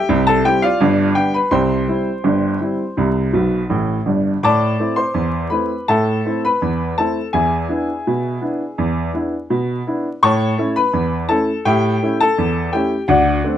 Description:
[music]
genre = ragtime piano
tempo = 83 BPM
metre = 2/4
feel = straight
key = unclear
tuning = A4 = 439 Hz
[part]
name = clear upright piano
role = solo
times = 0.0-13.6 s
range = G1 to D6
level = -15 LUFS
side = equal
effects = none
[sound]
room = moderate small room reverb, RT60 0.5 s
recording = close, detailed microphones, vinyl crackle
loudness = -15 LUFS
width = side -10 dB against mid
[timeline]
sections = 0.0-4.4 A section; 4.4-13.6 B section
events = upright piano fill 3.3-4.4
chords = 0.1 C; 0.8 G7; 1.5 C; 4.4 Am; 7.3 E7; 10.2 A7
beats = | 0.08 0.80 | 1.52 2.25 | 2.98 3.70 | 4.43 5.16 | 5.88 6.60 | 7.32 8.05 | 8.77 9.48 | 10.21 10.93 | 11.64 12.36 | 13.08

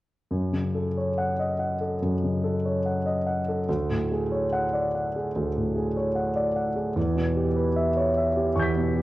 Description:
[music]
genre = classical, impressionist solo piano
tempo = 73 BPM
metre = 4/4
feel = rubato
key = unclear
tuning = A4 = 440 Hz
[part]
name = warm grand piano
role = solo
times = 0.3-9.0 s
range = D2 to B6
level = -23 LUFS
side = equal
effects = none
[sound]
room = moderate recital hall reverb, RT60 1.3 s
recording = worn, warbling old tape, cassette tape, warbly pitch drift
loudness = -23 LUFS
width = side -16 dB against mid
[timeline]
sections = 0.3-9.0 A section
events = none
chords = 0.3 F#m6; 3.7 Dmaj7#11; 7.0 Em6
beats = | 0.32 1.18 2.02 2.85 | 3.68 4.51 5.34 6.15 | 6.96 7.76 8.57

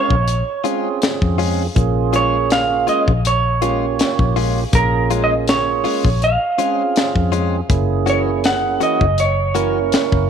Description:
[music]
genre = straight-eighth soul blues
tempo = 81 BPM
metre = 4/4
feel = swing 54% on 16ths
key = Bb minor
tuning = A4 = 442 Hz
[part]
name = electric guitar through a small old amp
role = melody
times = 0.0-10.3 s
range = Bb4 to Gb5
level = -19 LUFS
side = right 3 dB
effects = vibrato effect
[part]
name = tonewheel organ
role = accompaniment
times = 0.0-10.3 s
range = Bb3 to Bb4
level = -22 LUFS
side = right 10 dB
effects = slow rotary speaker
[part]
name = direct-recorded clean electric guitar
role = stabs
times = 0.0-9.8 s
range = Fb3 to Gb4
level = -24 LUFS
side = left 11 dB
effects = none
[part]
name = vintage muted fingered electric bass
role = bass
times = 0.1-10.3 s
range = Gb1 to F2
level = -20 LUFS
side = left 2 dB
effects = none
[part]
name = tight funk drum kit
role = drums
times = 0.1-10.3 s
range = hi-hat, kick drum, snare drum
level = -20 LUFS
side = left 2 dB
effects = none
[sound]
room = light reverb, small room ambience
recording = 1960s-style stereo with parts hard left and right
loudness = -15 LUFS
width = side -7 dB against mid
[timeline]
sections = 0.0-10.3 A section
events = none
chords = 0.0 Bbm7; 7.7 Gb7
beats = 0.27 1.01 | 1.76 2.50 3.24 3.98 | 4.72 5.46 6.21 6.95 | 7.69 8.43 9.17 9.91

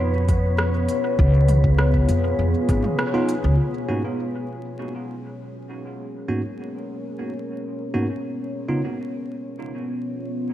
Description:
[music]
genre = ambient dub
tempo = 100 BPM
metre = 4/4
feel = straight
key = G# dorian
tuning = A4 = 440 Hz
[part]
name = deep dark ambient pad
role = sustained chords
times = 0.0-10.5 s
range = B3 to C#5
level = -26 LUFS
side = left 1 dB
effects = chorus, built-in reverb
[part]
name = upright bass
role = bass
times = 0.0-3.6 s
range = G#1 to E#2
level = -18 LUFS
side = equal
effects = tube saturation
[part]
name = wind-like tuned noise texture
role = texture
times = 0.0-3.6 s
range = B3 to B4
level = -36 LUFS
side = equal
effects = built-in reverb
[part]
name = electronic kick drum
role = drums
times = 0.3-2.8 s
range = none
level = -22 LUFS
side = equal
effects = overdrive
[part]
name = organic electronic drum kit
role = drums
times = 0.3-3.4 s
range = hi-hat, rim click, toms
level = -29 LUFS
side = equal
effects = overdrive, low-pass filter on hats, low-pass filter on toms, low-pass filter on snare, dub echo
[part]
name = bell-like tine electric piano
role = stabs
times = 3.1-8.8 s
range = G#2 to F#4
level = -28 LUFS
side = right 2 dB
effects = dub echo
[sound]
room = light reverb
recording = vinyl crackle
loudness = -20 LUFS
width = side -12 dB against mid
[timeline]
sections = 0.0-3.6 A section; 3.6-10.5 B section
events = band accent 3.0; filter sweep on ambient pad 3.6-10.5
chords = 0.0 C#7; 3.6 G#m11; 8.4 C#7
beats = 0.59 | 1.19 1.79 2.39 2.99 | 3.59 4.19 4.79 5.39 | 5.99 6.59 7.19 7.79 | 8.39 8.99 9.59 10.19

